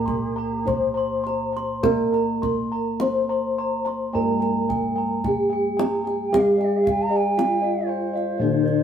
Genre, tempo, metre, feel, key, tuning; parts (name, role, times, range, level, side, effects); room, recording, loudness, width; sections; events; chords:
Javanese gamelan; 51-60 BPM; 4/4; straight; A4 = 445 Hz
gamelan-type bronze metallophone; melody; 0.0-8.8 s; D4+30c to C5; -24 LUFS; left 1 dB
mellow hollow bansuri; second line; 0.0-8.8 s; G4+25c to Bb5-46c; -28 LUFS; right 3 dB
gamelan-type bronze metallophone; accompaniment; 0.0-8.8 s; D3+30c to Bb3-45c; -28 LUFS; left 1 dB
gamelan-type bossed gongs; arpeggios; 0.0-8.8 s; Bb4-45c to C6; -31 LUFS; left 3 dB
gamelan-type bronze metallophone; arpeggios; 0.0-8.8 s; D5+30c to C6; -31 LUFS; right 4 dB
gamelan-type bossed gongs; bass; 0.0-8.8 s; G2+25c to Bb4-45c; -28 LUFS; right 1 dB
kendang; percussion; 0.1-8.8 s; -28 LUFS; equal
moderate stone room reverb, RT60 1.0 s; band playing live in one room; -20 LUFS; side -8 dB against mid
0.0-8.8 A section